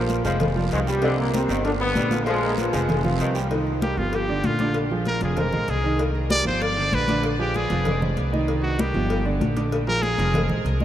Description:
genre	latin, salsa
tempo	193 BPM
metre	4/4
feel	straight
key	C minor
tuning	A4 = 440 Hz
part	bright trombone section	melody	0.0-3.4 s	G2 to F4	-27 LUFS	left 1 dB	none
part	warm saxophone section	second line	0.0-3.4 s	D3 to G3	-30 LUFS	left 2 dB	none
part	clear grand piano	accompaniment	0.0-10.8 s	C3 to F6	-27 LUFS	right 3 dB	none
part	upright bass	bass	0.0-10.8 s	F1 to C2	-26 LUFS	equal	none
part	congas	percussion	0.1-10.8 s	none	-30 LUFS	left 1 dB	none
part	cowbell	percussion	0.1-10.8 s	none	-32 LUFS	left 5 dB	none
part	guiro	percussion	0.1-3.5 s	none	-41 LUFS	right 7 dB	none
part	bright trumpet	melody	3.8-10.5 s	F4 to D5	-26 LUFS	equal	none
room	wet huge ambient reverb, RT60 7.9 s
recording	in a vast, echoing space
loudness	-20 LUFS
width	side -11 dB against mid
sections	0.0-3.5 A section; 3.5-10.8 B section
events	trumpet solo 3.5-10.8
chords	0.4 Fm; 1.0 Cm7; 1.6 G7; 2.3 Bb5; 2.9 Fm; 3.5 Cm7; 4.1 G5; 4.8 Bb7; 5.4 Fm; 6.0 Cm7; 6.6 G7; 7.2 Bb7; 7.9 Fm; 8.5 Cm7; 9.1 G5; 9.7 Bb7; 10.3 Fm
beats	0.10 0.41 0.72 | 1.03 1.34 1.65 1.96 | 2.27 2.58 2.89 3.20 | 3.51 3.82 4.13 4.45 | 4.76 5.07 5.38 5.69 | 6.00 6.31 6.62 6.93 | 7.24 7.55 7.86 8.17 | 8.48 8.79 9.10 9.41 | 9.72 10.04 10.35 10.65

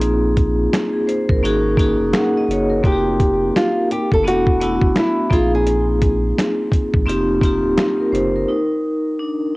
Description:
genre	lo-fi hip hop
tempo	85 BPM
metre	4/4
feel	swing 62% on 16ths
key	F dorian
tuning	A4 = 440 Hz
part	vibraphone with hard mallets	accompaniment	0.0-9.6 s	A3 to Gb5	-18 LUFS	equal	cassette tape
part	sub bass with octave	bass	0.0-8.4 s	D1 to Bb1	-22 LUFS	equal	none
part	dusty soul sampler-style drum kit	drums	0.0-8.3 s	finger snaps, hi-hat, kick drum, snare drum	-18 LUFS	equal	none
part	nylon-string guitar	melody	2.9-5.9 s	E4 to A4	-20 LUFS	equal	cassette tape, tape echo
room	light reverb, small room reverb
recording	home recording on cassette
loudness	-15 LUFS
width	side -22 dB against mid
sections	0.0-8.5 A section; 8.5-9.6 B section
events	vibraphone solo 8.5-9.6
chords	0.0 Bb9sus4; 1.4 Ab9sus4; 2.8 F9sus4; 4.2 E9sus4; 5.3 Bb9sus4; 7.1 F9sus4; 8.5 N.C.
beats	| 0.01 0.72 1.42 2.13 | 2.83 3.54 4.25 4.95 | 5.66 6.36 7.07 7.78 | 8.48 9.19

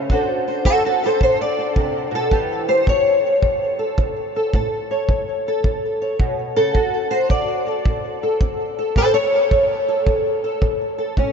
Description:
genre	acoustic country blues, solo or duo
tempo	108 BPM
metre	4/4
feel	swing 66% on 8ths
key	A mixolydian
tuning	A4 = 440 Hz
part	fingerpicked old ladder-braced acoustic guitar	melody	0.0-11.3 s	E2 to D5	-18 LUFS	equal	analog chorus, ping-pong delay
part	kick drum	drums	0.1-11.3 s	none	-20 LUFS	equal	none
room	wet huge ambient reverb, RT60 8.1 s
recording	dreamy mix soaked in reverb, nothing above 7.8 kHz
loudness	-17 LUFS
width	side -6 dB against mid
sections	0.0-11.3 A section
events	steel-string acoustic guitar solo 0.0-11.3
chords	0.1 D7; 2.3 A7; 6.8 D; 9.0 A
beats	| 0.10 0.65 1.21 1.76 | 2.32 2.87 3.43 3.98 | 4.54 5.09 5.64 6.20 | 6.75 7.30 7.86 8.41 | 8.96 9.52 10.07 10.62 | 11.18

